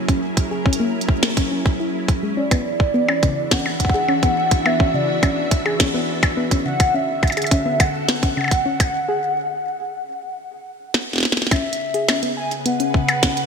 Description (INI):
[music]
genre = IDM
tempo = 105 BPM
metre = 4/4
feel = straight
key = C# phrygian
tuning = A4 = 440 Hz
[part]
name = soft string machine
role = sustained chords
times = 0.0-13.5 s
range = C#3 to E5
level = -26 LUFS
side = equal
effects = ensemble chorus
[part]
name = soft round pluck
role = arpeggios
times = 0.1-13.4 s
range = C#3 to G#4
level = -24 LUFS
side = left 2 dB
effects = chorus, digital delay
[part]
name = electronic kick drum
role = drums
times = 0.1-13.3 s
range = none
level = -18 LUFS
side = equal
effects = studio reverb
[part]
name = glitchy drum kit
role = drums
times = 0.1-13.5 s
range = hi-hat, percussion blips, snare drum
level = -22 LUFS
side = equal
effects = studio reverb
[part]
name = warbly nostalgic lead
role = melody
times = 2.4-13.5 s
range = D5 to G#5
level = -23 LUFS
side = equal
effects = lush chorus, ping-pong delay
[sound]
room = moderate lush hall reverb, RT60 2.7 s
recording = bright 1980s-style digital production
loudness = -17 LUFS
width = side -6 dB against mid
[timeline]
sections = 0.0-11.5 A section; 11.5-13.5 B section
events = break 9.2-11.5; drum fill 10.9-11.5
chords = 0.0 F#7; 2.4 E7; 6.9 Dadd9; 11.5 C#m7